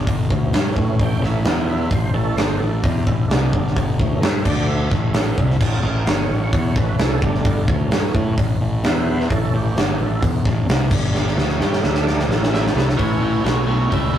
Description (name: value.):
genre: blues rock power trio and southern rock.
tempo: 130 BPM.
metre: 4/4.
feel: straight.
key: A major.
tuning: A4 = 441 Hz.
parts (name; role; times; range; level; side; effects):
overdriven tonewheel organ; sustained chords; 0.0-14.2 s; D3 to G5; -27 LUFS; right 2 dB; chorus vibrato, slow rotary speaker.
fuzz fingered electric bass; bass; 0.0-14.2 s; G1 to A2; -20 LUFS; equal; overdrive.
big rock drum kit; drums; 0.1-14.0 s; crash cymbal, hi-hat, kick drum, snare drum; -19 LUFS; equal; none.
octave-fuzz lead guitar; melody; 12.5-14.2 s; B4 to E5; -27 LUFS; right 4 dB; distortion.
overdriven electric guitar; riff; 13.0-14.2 s; A2 to G3; -21 LUFS; equal; none.
room: light reverb.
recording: rough rehearsal-room recording, tube saturation.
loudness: -16 LUFS.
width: side -10 dB against mid.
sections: 0.0-13.0 A section; 13.0-14.2 B section.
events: tonewheel organ solo 0.0-13.0; drum fill 11.1-13.0.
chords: 0.3 A; 1.4 E5; 1.9 A; 3.5 G5; 4.0 A; 4.5 D5; 4.9 A; 7.2 G5; 7.7 A; 8.8 E5; 9.3 A; 10.9 G5; 11.4 A; 11.8 D5; 12.3 A.